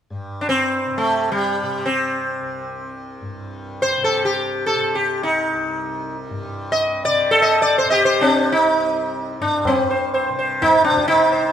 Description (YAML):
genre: indian classical, Hindustani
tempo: free time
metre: none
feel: none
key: C raga shivaranjani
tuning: A4 = 442 Hz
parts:
  - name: tanpura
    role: drone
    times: 0.1-11.5 s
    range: C2 to C3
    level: -28 LUFS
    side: left 1 dB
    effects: none
  - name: sitar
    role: melody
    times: 0.4-11.5 s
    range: G3 to Eb5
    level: -17 LUFS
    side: equal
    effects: none
  - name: tabla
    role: percussion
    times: 9.7-11.3 s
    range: none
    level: -23 LUFS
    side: left 2 dB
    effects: none
room: moderate recital hall reverb, RT60 1.4 s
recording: minimal, uncompressed stereo recording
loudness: -16 LUFS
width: side -9 dB against mid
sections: 0.1-9.7 A section; 9.7-11.5 B section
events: none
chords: none